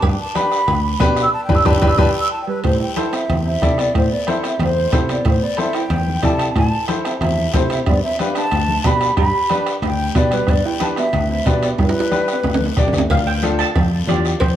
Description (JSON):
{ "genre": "latin, cumbia", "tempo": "184 BPM", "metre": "4/4", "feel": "straight", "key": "A minor", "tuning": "A4 = 440 Hz", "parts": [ { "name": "mellow hollow concert flute", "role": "melody", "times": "0.0-12.7 s", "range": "B4 to E6", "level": "-21 LUFS", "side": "equal", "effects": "slapback echo" }, { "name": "fingered electric bass", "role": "bass", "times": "0.0-14.6 s", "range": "G1 to C3", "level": "-20 LUFS", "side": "equal", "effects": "none" }, { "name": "bombo", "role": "percussion", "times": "0.0-14.6 s", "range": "none", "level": "-21 LUFS", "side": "right 1 dB", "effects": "none" }, { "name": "congas", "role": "percussion", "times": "0.0-14.6 s", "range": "none", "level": "-26 LUFS", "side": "left 2 dB", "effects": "none" }, { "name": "cowbell and timbales", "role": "percussion", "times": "0.0-14.6 s", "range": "none", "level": "-27 LUFS", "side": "right 4 dB", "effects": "none" }, { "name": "guiro", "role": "percussion", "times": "0.0-14.6 s", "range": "none", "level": "-32 LUFS", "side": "left 6 dB", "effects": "none" }, { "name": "bright upright piano", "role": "accompaniment", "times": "0.3-14.3 s", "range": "D4 to D5", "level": "-23 LUFS", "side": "left 3 dB", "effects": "none" }, { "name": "steel pan", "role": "second line", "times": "2.5-14.6 s", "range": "G3 to A5", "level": "-25 LUFS", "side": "right 3 dB", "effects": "none" } ], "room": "moderate plate reverb, RT60 3.3 s", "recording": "small room ambience", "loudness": "-15 LUFS", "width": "side -11 dB against mid", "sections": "0.0-2.6 A section; 2.6-13.1 B section; 13.1-14.6 C section", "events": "flute solo 0.0-2.6; band accent 1.3-2.6; drum fill 1.8-2.6, 11.8-13.1; steel pan solo 13.1-14.6", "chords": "0.0 G; 2.6 Am; 7.9 G; 13.1 Dm" }